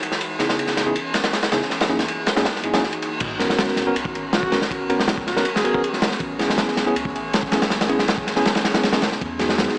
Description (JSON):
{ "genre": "drum and bass, jungle", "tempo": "160 BPM", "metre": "4/4", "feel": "straight", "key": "G# minor", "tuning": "A4 = 441 Hz", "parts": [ { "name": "airy breathy pad", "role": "sustained chords", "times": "0.0-9.8 s", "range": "E3 to A#4", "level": "-30 LUFS", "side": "equal", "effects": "chorus" }, { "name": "crunchy breakbeat drum kit", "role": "drums", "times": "0.0-9.8 s", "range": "crash cymbal, kick drum, ride cymbal, snare drum", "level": "-20 LUFS", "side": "equal", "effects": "high-pass filter on kick, high-pass filter on cymbals, high-pass filter on snare, high-pass filter on room" }, { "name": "bell-like tine electric piano", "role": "stabs", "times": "0.4-9.8 s", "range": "F#2 to A#4", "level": "-24 LUFS", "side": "equal", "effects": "medium stereo tremolo, dub echo" }, { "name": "soft dub sub bass", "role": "bass", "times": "3.2-9.7 s", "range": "E1 to E2", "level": "-38 LUFS", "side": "equal", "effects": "none" }, { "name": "sub drop", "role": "sound effects", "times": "3.2-4.7 s", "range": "none", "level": "-41 LUFS", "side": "equal", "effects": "none" }, { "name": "clear alto saxophone", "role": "melody", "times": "4.3-6.1 s", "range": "F#4 to G#4", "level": "-30 LUFS", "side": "equal", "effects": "none" } ], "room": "light reverb", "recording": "dry, gritty hardware recording, vinyl crackle, small speaker sound", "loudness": "-18 LUFS", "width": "side -36 dB against mid", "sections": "0.0-3.2 A section; 3.2-9.8 B section", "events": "drop 3.2-9.8; impact 3.2-4.7", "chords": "0.2 C#m7; 1.7 F#13; 3.2 G#m11; 6.2 Amaj9; 9.2 Emaj9", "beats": "| 0.21 0.58 0.96 1.33 | 1.71 2.08 2.46 2.83 | 3.21 3.58 3.96 4.33 | 4.71 5.08 5.46 5.83 | 6.21 6.58 6.96 7.33 | 7.71 8.08 8.46 8.83 | 9.21 9.58" }